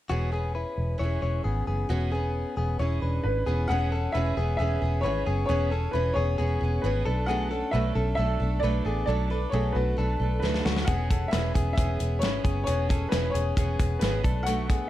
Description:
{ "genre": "jangly indie pop", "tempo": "134 BPM", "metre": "4/4", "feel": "straight", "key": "E mixolydian", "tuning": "A4 = 441 Hz", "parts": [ { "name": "picked steel-string acoustic guitar", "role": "accompaniment", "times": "0.1-14.9 s", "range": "B2 to A4", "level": "-33 LUFS", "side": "right 5 dB", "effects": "none" }, { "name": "direct-recorded clean electric guitar", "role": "arpeggios", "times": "0.1-14.9 s", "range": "A3 to C#5", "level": "-32 LUFS", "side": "left 4 dB", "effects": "vibrato effect, slapback echo" }, { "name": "vintage muted fingered electric bass", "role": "bass", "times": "0.1-14.8 s", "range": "E1 to D2", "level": "-27 LUFS", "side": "equal", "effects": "none" }, { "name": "warm upright piano", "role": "melody", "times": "3.2-14.9 s", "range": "B4 to F#5", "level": "-31 LUFS", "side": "left 1 dB", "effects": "slapback echo" }, { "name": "modern studio drum kit", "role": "drums", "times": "10.4-14.8 s", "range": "hi-hat, kick drum, snare drum", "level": "-27 LUFS", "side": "equal", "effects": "none" } ], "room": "light reverb", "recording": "dark, warm production", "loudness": "-24 LUFS", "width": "side -14 dB against mid", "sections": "0.1-3.7 A section; 3.7-14.9 B section", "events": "drum fill 10.4-10.9", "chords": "0.1 E6; 7.1 Bm7; 10.9 E6; 14.2 Bm7", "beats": "| 0.10 0.55 1.00 1.45 | 1.90 2.35 2.80 3.25 | 3.70 4.15 4.59 5.04 | 5.49 5.94 6.39 6.84 | 7.29 7.74 8.19 8.63 | 9.08 9.53 9.98 10.43 | 10.88 11.33 11.78 12.23 | 12.68 13.12 13.57 14.02 | 14.47" }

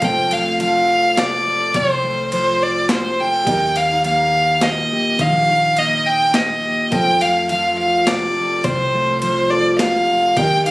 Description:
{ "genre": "honky-tonk and classic country", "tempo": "104 BPM", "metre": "3/4", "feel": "straight", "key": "F mixolydian", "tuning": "A4 = 442 Hz", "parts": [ { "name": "clear fiddle", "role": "melody", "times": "0.0-10.7 s", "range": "C5 to G5", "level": "-16 LUFS", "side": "equal", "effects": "none" }, { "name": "dark upright piano", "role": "accompaniment", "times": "0.0-10.7 s", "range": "F4 to Eb5", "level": "-28 LUFS", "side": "right 1 dB", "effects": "none" }, { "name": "picked steel-string acoustic guitar", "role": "accompaniment", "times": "0.0-10.7 s", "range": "F2 to A4", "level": "-23 LUFS", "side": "equal", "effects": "none" }, { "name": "upright bass", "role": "bass", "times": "0.0-10.7 s", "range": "F1 to F2", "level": "-28 LUFS", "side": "equal", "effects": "none" }, { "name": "breakbeat sampler-style drum kit", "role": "drums", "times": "0.0-10.7 s", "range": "kick drum, ride cymbal, snare drum", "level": "-25 LUFS", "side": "equal", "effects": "overdrive" } ], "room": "light reverb", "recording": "recorded on a phone in the room, club reverb", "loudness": "-14 LUFS", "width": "side -20 dB against mid", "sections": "0.0-10.7 A section", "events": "none", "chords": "0.0 F; 3.5 Eb; 6.9 F", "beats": "| 0.02 0.60 1.17 | 1.75 2.32 2.90 | 3.47 4.05 4.62 | 5.20 5.77 6.35 | 6.92 7.50 8.07 | 8.65 9.23 9.80 | 10.38" }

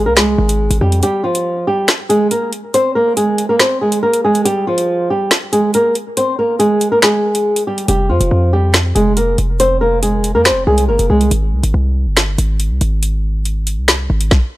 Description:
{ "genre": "hip hop, drill", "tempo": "140 BPM", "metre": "4/4", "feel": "half-time", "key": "F minor", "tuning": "A4 = 441 Hz", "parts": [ { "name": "flamenco guitar", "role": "melody", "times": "0.0-11.3 s", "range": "F3 to C5", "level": "-14 LUFS", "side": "equal", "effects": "analog delay" }, { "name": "hard-hitting 808-style bass", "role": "bass", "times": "0.0-1.0, 7.9-14.3 s", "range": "F1 to F2", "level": "-15 LUFS", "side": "equal", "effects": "none" }, { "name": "drill drum kit", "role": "drums", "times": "0.2-14.4 s", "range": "finger snaps, hi-hat, kick drum, snare drum", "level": "-15 LUFS", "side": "equal", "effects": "none" } ], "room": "little or no reverb", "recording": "dry, gritty hardware recording", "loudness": "-12 LUFS", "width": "side -17 dB against mid", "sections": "0.0-14.6 A section", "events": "kick muted 1.0-7.9; break 11.3-14.6", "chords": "0.0 Ab6; 1.0 Fm; 11.3 Ab", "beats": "0.17 0.60 | 1.03 1.46 1.88 2.31 | 2.74 3.17 3.60 4.03 | 4.46 4.88 5.31 5.74 | 6.17 6.60 7.03 7.46 | 7.88 8.31 8.74 9.17 | 9.60 10.03 10.46 10.88 | 11.31 11.74 12.17 12.60 | 13.03 13.46 13.88 14.31" }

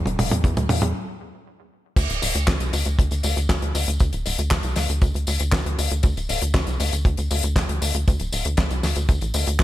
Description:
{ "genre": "italo disco", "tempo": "118 BPM", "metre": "4/4", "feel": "straight", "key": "unclear", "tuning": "A4 = 440 Hz", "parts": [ { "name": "tight sequencer bass", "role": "bass", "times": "0.0-9.6 s", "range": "D1 to E2", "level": "-23 LUFS", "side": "equal", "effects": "none" }, { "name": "damped 70s drum kit", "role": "drums", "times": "0.1-9.6 s", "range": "crash cymbal, handclaps, hi-hat, snare drum, tambourine, toms", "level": "-24 LUFS", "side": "left 1 dB", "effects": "gated reverb" }, { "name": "kick drum", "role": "drums", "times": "0.4-9.6 s", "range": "none", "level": "-19 LUFS", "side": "equal", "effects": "none" } ], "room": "little or no reverb", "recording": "none", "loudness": "-20 LUFS", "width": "side -14 dB against mid", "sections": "0.0-2.0 A section; 2.0-9.6 B section", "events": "drum fill 0.0-1.0; stop 1.0-2.0", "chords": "none", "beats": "0.44 0.95 1.46 | 1.97 2.48 2.98 3.49 | 4.00 4.51 5.02 5.53 | 6.04 6.54 7.05 7.56 | 8.07 8.58 9.09 9.60" }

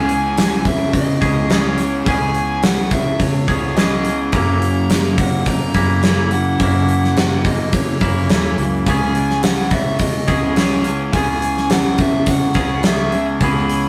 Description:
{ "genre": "rock, shoegaze and dream pop", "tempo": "106 BPM", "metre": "4/4", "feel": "straight", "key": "unclear", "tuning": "A4 = 441 Hz", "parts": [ { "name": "fuzz lead guitar", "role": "melody", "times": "0.0-13.9 s", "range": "C#5 to B5", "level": "-26 LUFS", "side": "equal", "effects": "distortion" }, { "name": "thick fuzz guitar", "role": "riff", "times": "0.0-13.9 s", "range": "F#2 to C#4", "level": "-25 LUFS", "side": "equal", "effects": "distortion" }, { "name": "twangy electric guitar", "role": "riff", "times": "0.0-13.9 s", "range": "F#2 to G#4", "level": "-23 LUFS", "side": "equal", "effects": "none" }, { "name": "vintage muted fingered electric bass", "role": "bass", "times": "0.0-13.9 s", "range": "C#2 to F#3", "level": "-25 LUFS", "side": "equal", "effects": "none" }, { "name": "gated 80s drum kit", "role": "drums", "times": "0.1-13.8 s", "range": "hi-hat, kick drum, snare drum", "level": "-20 LUFS", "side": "equal", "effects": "none" } ], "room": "wet stone room reverb, RT60 1.3 s", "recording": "rough rehearsal-room recording, tube saturation", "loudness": "-17 LUFS", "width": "mono", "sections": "0.0-13.9 A section", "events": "none", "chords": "0.0 C#m7; 4.3 F#7; 8.9 C#m7", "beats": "0.37 0.94 1.50 | 2.07 2.63 3.20 3.77 | 4.33 4.90 5.47 6.03 | 6.60 7.17 7.73 8.30 | 8.87 9.44 10.00 10.57 | 11.13 11.70 12.27 12.84 | 13.40" }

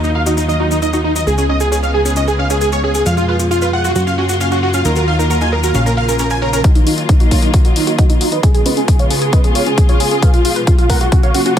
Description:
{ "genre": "uplifting trance", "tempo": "134 BPM", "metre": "4/4", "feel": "straight", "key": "Eb minor", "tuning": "A4 = 440 Hz", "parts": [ { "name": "dense compressed supersaw", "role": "melody", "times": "0.0-11.6 s", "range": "Eb4 to Ab5", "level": "-17 LUFS", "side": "right 1 dB", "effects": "sidechain pumping, low-pass filter, dub echo" }, { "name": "warm studio string section", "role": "sustained chords", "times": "0.0-11.6 s", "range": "Cb3 to F4", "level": "-20 LUFS", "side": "left 1 dB", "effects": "sidechain pumping" }, { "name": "analog pluck", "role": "arpeggios", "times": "0.0-11.6 s", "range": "Db4 to Cb5", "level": "-22 LUFS", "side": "right 3 dB", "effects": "chorus, sidechain pumping, dub echo" }, { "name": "plucky analog bass", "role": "bass", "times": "0.0-6.6 s", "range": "Bb1 to Gb2", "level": "-18 LUFS", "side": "equal", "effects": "sidechain pumping" }, { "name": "electronic hi-hat", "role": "drums", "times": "0.0-11.6 s", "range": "none", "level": "-25 LUFS", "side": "left 5 dB", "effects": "overdrive, low-pass filter on hats" }, { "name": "maracas", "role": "percussion", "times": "0.0-6.6 s", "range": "none", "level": "-26 LUFS", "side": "left 4 dB", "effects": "none" }, { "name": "electronic kick drum", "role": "drums", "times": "6.6-11.6 s", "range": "none", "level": "-11 LUFS", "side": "equal", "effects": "none" } ], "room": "little or no reverb", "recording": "none", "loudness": "-11 LUFS", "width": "side -10 dB against mid", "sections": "0.0-6.6 A section; 6.6-11.6 B section", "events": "filter sweep on synth pluck 0.0-6.6, 6.6-11.6; filter sweep on string section 0.0-6.6; build-up 6.6-11.6", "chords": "0.0 Ebmadd9; 1.3 Db7; 3.1 Fdim; 4.0 Gbmaj7; 4.9 Ebmadd9; 5.7 Bbm; 6.6 Ebmadd9; 8.4 Db7; 10.2 Fdim", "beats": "0.37 0.82 | 1.27 1.72 2.17 2.61 | 3.06 3.51 3.96 4.40 | 4.85 5.30 5.75 6.20 | 6.64 7.09 7.54 7.99 | 8.43 8.88 9.33 9.78 | 10.22 10.67 11.12 11.57" }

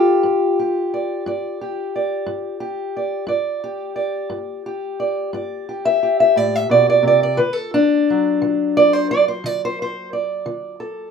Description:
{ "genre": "acoustic country blues, solo or duo", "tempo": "59 BPM (dotted quarters)", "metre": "12/8", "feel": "straight", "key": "unclear", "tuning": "A4 = 441 Hz", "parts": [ { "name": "fingerpicked steel-string acoustic guitar", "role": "solo", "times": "0.0-11.1 s", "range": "G2 to E5", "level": "-17 LUFS", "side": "equal", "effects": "none" } ], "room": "wet small room reverb, RT60 0.5 s", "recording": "rough home demo mix", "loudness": "-17 LUFS", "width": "side -6 dB against mid", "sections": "0.0-11.1 A section", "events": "none", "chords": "0.0 G7(no3); 7.4 D", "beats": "0.23 1.25 2.27 | 3.29 4.32 5.34 6.36 | 7.38 8.41 9.43 10.46" }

